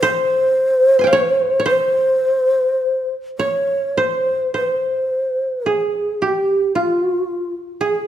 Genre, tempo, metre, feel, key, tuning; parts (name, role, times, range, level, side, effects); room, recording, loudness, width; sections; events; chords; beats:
japanese traditional, Japanese chamber music; 49-56 BPM; 4/4; rubato; C miyako bushi; A4 = 440 Hz
breathy mellow long shakuhachi; melody; 0.0-8.1 s; F4 to Db5; -16 LUFS; equal
koto; second line; 0.0-8.1 s; F4 to C6; -21 LUFS; right 2 dB
moderate scoring stage reverb, RT60 1.5 s; minimal, uncompressed stereo recording; -15 LUFS; side -11 dB against mid
0.0-4.5 A section; 4.5-8.1 B section
| 0.03 1.12 2.23 3.39 | 4.55 5.66 6.75 7.83